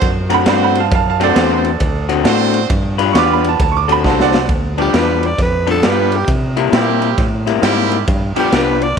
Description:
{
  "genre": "electric blues shuffle",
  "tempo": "134 BPM",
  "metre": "4/4",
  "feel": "swing 64% on 8ths",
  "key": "unclear",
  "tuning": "A4 = 440 Hz",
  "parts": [
    { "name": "bright horn section", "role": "stabs", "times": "0.0-8.9 s", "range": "G3 to C5", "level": "-21 LUFS", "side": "right 11 dB", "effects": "none" },
    { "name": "fingered electric bass", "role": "bass", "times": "0.0-9.0 s", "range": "C2 to C3", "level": "-20 LUFS", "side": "equal", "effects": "none" },
    { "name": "raw garage drum kit", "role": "drums", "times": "0.0-9.0 s", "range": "kick drum, ride cymbal, snare drum", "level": "-18 LUFS", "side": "equal", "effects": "none" },
    { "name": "bright upright piano", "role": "accompaniment", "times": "0.3-4.5 s", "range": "A4 to D6", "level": "-18 LUFS", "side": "right 14 dB", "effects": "none" },
    { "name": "electric guitar through a small old amp", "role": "riff", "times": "0.3-8.9 s", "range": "G2 to B4", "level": "-18 LUFS", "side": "left 13 dB", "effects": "none" },
    { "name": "growling tenor saxophone", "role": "melody", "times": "4.8-9.0 s", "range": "G4 to D5", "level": "-19 LUFS", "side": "right 2 dB", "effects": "none" }
  ],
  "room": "light reverb",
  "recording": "1960s-style stereo with parts hard left and right",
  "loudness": "-12 LUFS",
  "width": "side -6 dB against mid",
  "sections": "0.0-4.5 A section; 4.5-9.0 A section",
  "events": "drum fill 4.0-4.5; tenor saxophone solo 4.5-9.0",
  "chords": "0.0 D7; 2.7 G7; 3.6 D7; 4.5 G7; 6.3 C7; 8.1 G7"
}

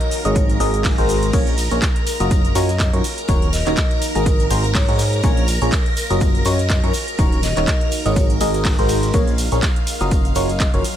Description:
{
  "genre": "piano house",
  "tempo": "123 BPM",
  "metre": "4/4",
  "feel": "swing 56% on 16ths",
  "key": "unclear",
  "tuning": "A4 = 441 Hz",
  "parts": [
    { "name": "vibraphone with medium mallets", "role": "melody", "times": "0.0-10.6 s", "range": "Bb4 to Eb5", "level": "-29 LUFS", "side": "left 1 dB", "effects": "dub echo" },
    { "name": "string machine, violins", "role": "sustained chords", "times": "0.0-11.0 s", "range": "Bb4 to Bb5", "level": "-28 LUFS", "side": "equal", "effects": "ensemble chorus, sidechain pumping" },
    { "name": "house drum kit", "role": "drums", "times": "0.0-11.0 s", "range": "cabasa, crash cymbal, handclaps, hi-hat, ride cymbal", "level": "-27 LUFS", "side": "right 2 dB", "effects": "none" },
    { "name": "deep dark ambient pad", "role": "texture", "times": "0.0-11.0 s", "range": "Eb4 to Ab4", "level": "-31 LUFS", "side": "equal", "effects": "chorus, built-in reverb, sidechain pumping" },
    { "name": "vintage brush drum kit", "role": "drums", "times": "0.1-11.0 s", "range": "hi-hat, shaker, snare drum", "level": "-34 LUFS", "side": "equal", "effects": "none" },
    { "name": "barking FM electric piano", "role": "riff", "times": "0.2-10.8 s", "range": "Bb2 to Eb5", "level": "-23 LUFS", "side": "equal", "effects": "phaser, sidechain pumping, dub echo" },
    { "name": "fat analog bass", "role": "bass", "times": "0.2-10.8 s", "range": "Eb1 to Ab2", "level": "-21 LUFS", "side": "equal", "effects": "sidechain pumping" },
    { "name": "electronic kick drum", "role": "drums", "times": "0.4-10.7 s", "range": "none", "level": "-18 LUFS", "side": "equal", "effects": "none" },
    { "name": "tambourine and congas", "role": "percussion", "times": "1.3-11.0 s", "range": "none", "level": "-34 LUFS", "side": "left 2 dB", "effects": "none" }
  ],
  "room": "little or no reverb",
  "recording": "none",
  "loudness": "-15 LUFS",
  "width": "side -10 dB against mid",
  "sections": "0.0-11.0 A section",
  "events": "none",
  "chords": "0.1 Absus2; 1.3 Gbmaj7; 3.0 Ebm7; 4.0 Ab9sus4; 5.2 Gbmaj7; 6.9 Ebm7; 7.9 Absus2; 9.1 Gbmaj7"
}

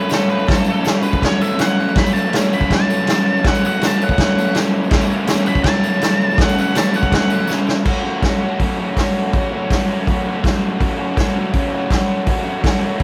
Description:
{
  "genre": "garage rock duo or trio",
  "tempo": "163 BPM",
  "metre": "4/4",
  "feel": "straight",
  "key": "F# minor",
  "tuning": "A4 = 443 Hz",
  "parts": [
    { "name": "octave-fuzz lead guitar", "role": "melody", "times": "0.0-7.5 s", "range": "A4 to B5", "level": "-24 LUFS", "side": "equal", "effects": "distortion" },
    { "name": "raw garage guitar", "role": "riff", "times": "0.0-13.0 s", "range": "F#2 to F#4", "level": "-21 LUFS", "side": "equal", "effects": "overdrive" },
    { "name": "tambourine", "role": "percussion", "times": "0.0-7.8 s", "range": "none", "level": "-38 LUFS", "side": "equal", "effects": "none" },
    { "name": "vintage drum kit", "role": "drums", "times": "0.1-13.0 s", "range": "crash cymbal, hi-hat, kick drum, snare drum", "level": "-20 LUFS", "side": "equal", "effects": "none" }
  ],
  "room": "light reverb",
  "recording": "band playing live in one room",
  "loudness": "-17 LUFS",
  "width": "mono",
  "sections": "0.0-7.9 A section; 7.9-13.0 B section",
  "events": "lead electric guitar solo 0.0-7.9; drum fill 7.5-7.9",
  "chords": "0.0 F#m"
}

